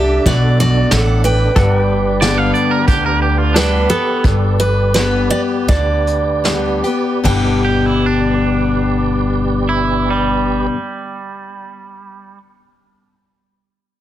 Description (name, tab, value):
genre	honky-tonk and classic country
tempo	74-92 BPM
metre	4/4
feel	straight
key	G major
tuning	A4 = 440 Hz
part	picked steel-string acoustic guitar	melody	0.0-10.7 s	F#4 to G5	-19 LUFS	right 2 dB	none
part	mellow tonewheel organ	accompaniment	0.0-10.7 s	D4 to D5	-24 LUFS	right 4 dB	chorus vibrato, fast rotary speaker
part	picked steel-string acoustic guitar	accompaniment	0.0-10.8 s	G2 to G4	-18 LUFS	left 4 dB	none
part	pedal steel guitar	sustained chords	0.0-4.2 s	A4 to A5	-26 LUFS	right 1 dB	none
part	upright bass	bass	0.0-10.7 s	G1 to D2	-18 LUFS	equal	none
part	vintage brush drum kit	drums	0.3-7.4 s	hi-hat, kick drum, ride cymbal, snare drum	-18 LUFS	equal	none
part	twangy electric guitar	second line	2.2-12.4 s	G3 to F5	-20 LUFS	right 4 dB	analog delay
room	light reverb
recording	heavily compressed radio sound, multiband compression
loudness	-12 LUFS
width	side -12 dB against mid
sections	0.0-4.2 A section; 4.2-7.2 B section; 7.2-10.5 C section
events	slowing down 1.6-7.2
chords	0.0 D; 1.6 G